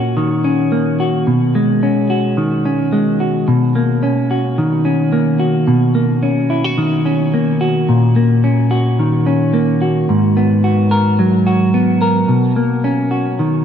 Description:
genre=dream pop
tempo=109 BPM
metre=4/4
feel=straight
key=B major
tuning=A4 = 442 Hz
part: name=semi-hollow electric guitar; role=solo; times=0.0-13.6 s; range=G#2 to A#4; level=-12 LUFS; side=equal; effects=wide subtle chorus, tape echo
room=moderate huge ambient reverb, RT60 6.7 s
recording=none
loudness=-12 LUFS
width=side -8 dB against mid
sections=0.0-3.5 A section; 3.5-13.6 A section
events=none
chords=0.0 D#m7/A#; 1.3 B69; 3.5 Bmaj9; 7.9 D#m7/A#; 10.1 G#m9; 12.3 Bmaj9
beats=0.18 0.73 | 1.28 1.83 2.38 2.93 | 3.48 4.03 4.58 5.13 | 5.68 6.23 6.78 7.33 | 7.88 8.43 8.98 9.53 | 10.08 10.63 11.19 11.73 | 12.29 12.84 13.39

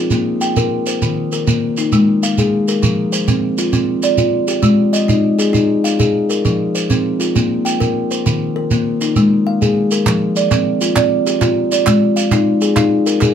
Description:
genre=southern african traditional, mbira-style interlocking cycle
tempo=133 BPM (dotted quarters)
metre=12/8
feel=straight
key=F dorian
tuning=A4 = 439 Hz
part: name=kalimba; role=arpeggios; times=0.0-13.3 s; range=Eb3 to G5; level=-14 LUFS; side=left 1 dB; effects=none
part: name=shekere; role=percussion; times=0.1-13.3 s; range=none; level=-19 LUFS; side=right 3 dB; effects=none
part: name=group handclap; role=percussion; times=10.1-13.3 s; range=none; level=-22 LUFS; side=right 4 dB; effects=none
room=light reverb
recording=none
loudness=-13 LUFS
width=side -8 dB against mid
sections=0.0-10.1 A section; 10.1-13.3 B section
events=none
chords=0.1 Bb5; 1.0 Eb5; 1.9 Ab5; 2.8 F5; 4.6 Ab5; 6.4 F5; 7.4 Bb5; 8.3 Eb5; 9.2 Ab5; 10.1 F5; 11.9 Ab5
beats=0.11 0.56 | 1.01 1.47 1.92 2.37 | 2.82 3.28 3.73 4.18 | 4.63 5.09 5.54 5.99 | 6.45 6.90 7.35 7.80 | 8.26 8.71 9.16 9.61 | 10.06 10.52 10.96 11.41 | 11.86 12.31 12.76 13.21

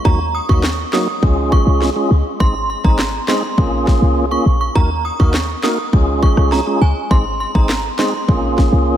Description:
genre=dancehall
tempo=102 BPM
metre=4/4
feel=straight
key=Eb dorian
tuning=A4 = 440 Hz
part: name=synth chime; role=melody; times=0.0-8.1 s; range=Ab5 to Eb6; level=-22 LUFS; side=right 2 dB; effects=ensemble chorus, tape echo
part: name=tonewheel organ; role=accompaniment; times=0.0-9.0 s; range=Gb3 to Bb4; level=-19 LUFS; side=right 1 dB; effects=overdrive, fast rotary speaker, sidechain pumping
part: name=short 808-style bass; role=bass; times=0.1-9.0 s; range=Ab1 to Eb2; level=-17 LUFS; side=equal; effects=none
part: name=island pop drum kit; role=drums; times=0.1-8.7 s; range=handclaps, kick drum, rim click, snare drum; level=-17 LUFS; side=equal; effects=none
room=moderate church reverb, RT60 3.2 s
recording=dreamy mix soaked in reverb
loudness=-13 LUFS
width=side -11 dB against mid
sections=0.0-9.0 A section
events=none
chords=0.0 Ebm; 1.2 Db; 2.4 Ab; 3.6 Bbm7; 4.8 Ebm; 5.9 Db; 7.1 Ab; 8.3 Bbm7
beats=| 0.05 0.64 1.23 1.81 | 2.40 2.99 3.58 4.17 | 4.75 5.34 5.93 6.52 | 7.11 7.70 8.28 8.87

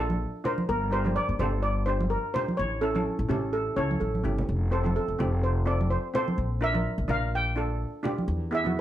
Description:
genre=calypso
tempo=126 BPM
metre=4/4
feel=swing 54% on 16ths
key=unclear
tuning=A4 = 437 Hz
part: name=steel pan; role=accompaniment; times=0.0-8.8 s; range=B3 to C5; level=-32 LUFS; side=equal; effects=none
part: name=upright bass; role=bass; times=0.0-8.8 s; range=F1 to E2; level=-28 LUFS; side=equal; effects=none
part: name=congas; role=percussion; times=0.1-8.8 s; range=none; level=-32 LUFS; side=right 2 dB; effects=none
part: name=steel pan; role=melody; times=0.5-8.6 s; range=G4 to G5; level=-29 LUFS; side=equal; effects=none
room=light reverb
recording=dark, warm production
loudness=-25 LUFS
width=side -12 dB against mid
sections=0.0-8.8 A section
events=steel pan solo 0.0-8.8; drum fill 4.0-4.5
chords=0.0 Bb; 0.7 Gm; 2.6 A; 4.5 Fadd9; 6.4 Bb; 8.3 E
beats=0.22 | 0.69 1.17 1.64 2.12 | 2.59 3.07 3.54 4.02 | 4.49 4.97 5.44 5.92 | 6.39 6.87 7.34 7.82 | 8.29 8.76

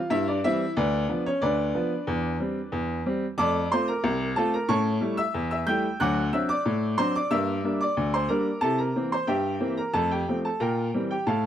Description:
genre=ragtime piano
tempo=91 BPM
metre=2/4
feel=straight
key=unclear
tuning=A4 = 439 Hz
part: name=bright upright piano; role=solo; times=0.0-11.5 s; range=C2 to G6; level=-23 LUFS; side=equal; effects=none
room=small room ambience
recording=dry, close 1970s-style studio recording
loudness=-23 LUFS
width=side -10 dB against mid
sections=0.0-11.5 A section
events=none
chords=0.0 C; 0.8 Bdim/D; 2.1 C/E; 3.4 F; 4.7 A7; 6.0 D7; 7.3 Gm; 8.6 C7; 9.9 F; 10.6 C7/Bb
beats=0.10 | 0.76 1.41 | 2.07 2.72 | 3.38 4.03 | 4.69 5.34 | 6.00 6.65 | 7.31 7.97 | 8.62 9.28 | 9.94 10.60 | 11.27

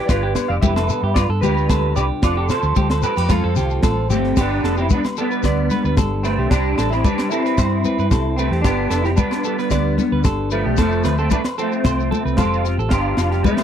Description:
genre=highlife guitar band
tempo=112 BPM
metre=4/4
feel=straight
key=G mixolydian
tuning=A4 = 439 Hz
part: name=electric guitar through a small old amp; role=melody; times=0.0-13.6 s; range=F3 to F5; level=-21 LUFS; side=right 1 dB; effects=ensemble chorus
part: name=picked swing-style acoustic guitar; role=accompaniment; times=0.0-13.6 s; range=F2 to F4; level=-28 LUFS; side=left 6 dB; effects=none
part: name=clean electric guitar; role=arpeggios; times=0.0-13.6 s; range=F4 to D5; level=-26 LUFS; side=right 8 dB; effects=none
part: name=hollow-body short-scale fingered electric bass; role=bass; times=0.1-13.4 s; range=F1 to G2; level=-21 LUFS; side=equal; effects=none
part: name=tight funk drum kit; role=drums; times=0.1-13.6 s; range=crash cymbal, kick drum, snare drum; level=-20 LUFS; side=equal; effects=none
part: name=agogo bells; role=percussion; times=0.1-13.6 s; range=none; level=-32 LUFS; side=left 14 dB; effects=none
part: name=congas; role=percussion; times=0.1-13.6 s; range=none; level=-24 LUFS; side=left 6 dB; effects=none
part: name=shekere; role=percussion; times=0.1-13.6 s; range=none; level=-28 LUFS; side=left 6 dB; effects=none
room=light reverb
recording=dry, close 1970s-style studio recording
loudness=-16 LUFS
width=side -9 dB against mid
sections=0.0-4.4 A section; 4.4-13.6 B section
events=none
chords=0.1 G7; 2.2 F; 4.4 G7; 6.5 C; 8.6 G7; 10.8 F; 12.9 G7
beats=| 0.10 0.63 1.17 1.70 | 2.23 2.77 3.30 3.84 | 4.37 4.91 5.44 5.97 | 6.51 7.04 7.58 8.11 | 8.64 9.18 9.71 10.25 | 10.78 11.31 11.85 12.38 | 12.92 13.45

